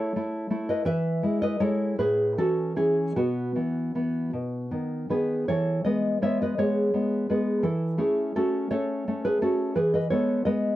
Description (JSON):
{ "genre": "romantic piece for solo classical guitar", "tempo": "51-59 BPM (dotted quarters)", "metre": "6/8", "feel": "rubato", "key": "E major", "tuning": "A4 = 440 Hz", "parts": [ { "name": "nylon-string guitar", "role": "solo", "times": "0.0-10.8 s", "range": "A2 to E5", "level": "-23 LUFS", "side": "equal", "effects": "none" } ], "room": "light reverb", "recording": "dry, close 1970s-style studio recording", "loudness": "-23 LUFS", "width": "side -14 dB against mid", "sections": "0.0-10.8 A section", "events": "none", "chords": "0.0 A; 0.9 E; 2.0 A; 3.2 Bsus4; 4.3 B; 5.5 E; 7.7 A/E; 9.8 E" }